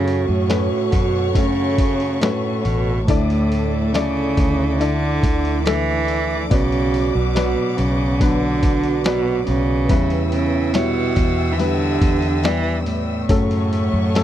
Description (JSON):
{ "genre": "pop ballad", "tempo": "70 BPM", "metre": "4/4", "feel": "straight", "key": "D major", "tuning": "A4 = 440 Hz", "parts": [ { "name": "clear cello", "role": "melody", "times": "0.0-14.2 s", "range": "A2 to E3", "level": "-21 LUFS", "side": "right 2 dB", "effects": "none" }, { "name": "dark French horn section", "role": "second line", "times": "0.0-13.2 s", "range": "E4 to G4", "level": "-27 LUFS", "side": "right 16 dB", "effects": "none" }, { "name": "felt-muted upright piano", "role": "accompaniment", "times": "0.0-14.2 s", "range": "A2 to D5", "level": "-24 LUFS", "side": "left 5 dB", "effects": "none" }, { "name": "warm studio string section", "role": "sustained chords", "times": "0.0-14.2 s", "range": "A4 to E6", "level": "-30 LUFS", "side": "left 2 dB", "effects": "none" }, { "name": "vintage muted fingered electric bass", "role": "bass", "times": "0.0-14.2 s", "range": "A1 to F#2", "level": "-22 LUFS", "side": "equal", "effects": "none" }, { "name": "lo-fi sampler-style drum kit", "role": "drums", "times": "0.1-14.2 s", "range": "hi-hat, kick drum, snare drum", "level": "-20 LUFS", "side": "equal", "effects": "none" } ], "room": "little or no reverb", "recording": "dry, close 1970s-style studio recording", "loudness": "-16 LUFS", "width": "side -11 dB against mid", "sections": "0.0-14.2 A section", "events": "none", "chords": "0.0 F#m; 3.1 Dsus2; 6.5 Bm; 9.9 Em; 13.3 F#m" }